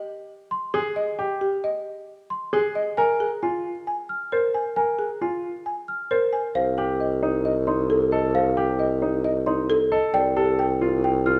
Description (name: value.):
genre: classical, minimalist pattern music.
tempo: 134 BPM.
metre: 4/4.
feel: straight.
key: C dorian from 6.6 s.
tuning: A4 = 440 Hz.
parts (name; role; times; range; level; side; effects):
folk marimba with medium hard mallets; melody; 0.0-11.3 s; G4 to Ab5; -28 LUFS; equal; none.
celesta; arpeggios; 0.5-11.4 s; F5 to F6; -29 LUFS; equal; none.
clear baby grand piano; arpeggios; 0.7-11.4 s; Eb4 to C5; -29 LUFS; equal; none.
mellow bassoon; bass; 6.6-11.4 s; C2; -26 LUFS; equal; none.
room: moderate recital hall reverb, RT60 1.6 s.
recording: dark, warm production.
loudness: -24 LUFS.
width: mono.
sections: 0.0-6.6 A section; 6.6-11.4 B section.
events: none.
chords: 0.0 Abmaj7; 3.0 Bb5/F; 6.6 Cmadd11; 10.1 Dm7/C.